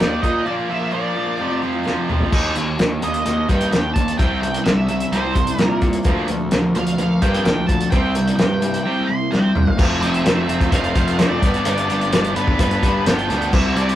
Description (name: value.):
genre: classic rock.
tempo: 128 BPM.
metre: 4/4.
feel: straight.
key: unclear.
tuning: A4 = 439 Hz.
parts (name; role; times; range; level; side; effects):
octave-fuzz lead guitar; melody; 0.0-14.0 s; B4 to C6; -25 LUFS; equal; distortion.
picked steel-string acoustic guitar; accompaniment; 0.0-14.0 s; G2 to Bb4; -31 LUFS; left 3 dB; none.
distorted electric guitar; riff; 0.0-14.0 s; F2 to E4; -24 LUFS; right 5 dB; overdrive.
overdriven electric guitar; riff; 0.0-14.0 s; F2 to E4; -25 LUFS; left 4 dB; none.
fuzz picked electric bass; bass; 0.0-14.0 s; F1 to Bb2; -23 LUFS; equal; overdrive.
cloth-damped thuddy drum kit; drums; 0.0-14.0 s; crash cymbal, hi-hat, kick drum, snare drum, toms; -19 LUFS; equal; none.
cowbell; percussion; 6.1-13.6 s; none; -33 LUFS; right 6 dB; none.
room: moderate small room reverb, RT60 0.5 s.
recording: rough rehearsal-room recording, warm saturation.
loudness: -16 LUFS.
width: side -12 dB against mid.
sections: 0.0-2.3 A section; 2.3-9.8 B section; 9.8-14.0 C section.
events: break 0.5-2.3; drum fill 1.9-2.3, 9.3-9.8.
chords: 0.5 Bb; 1.4 Fadd9; 2.3 Eb; 4.2 C; 6.1 Bbadd9/D; 7.9 C7; 9.8 F; 11.4 Gadd9.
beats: 0.00 | 0.46 0.93 1.40 1.86 | 2.33 2.80 3.26 3.73 | 4.19 4.66 5.13 5.59 | 6.06 6.53 6.99 7.46 | 7.92 8.39 8.86 9.33 | 9.79 10.26 10.73 11.20 | 11.66 12.13 12.60 13.06 | 13.53.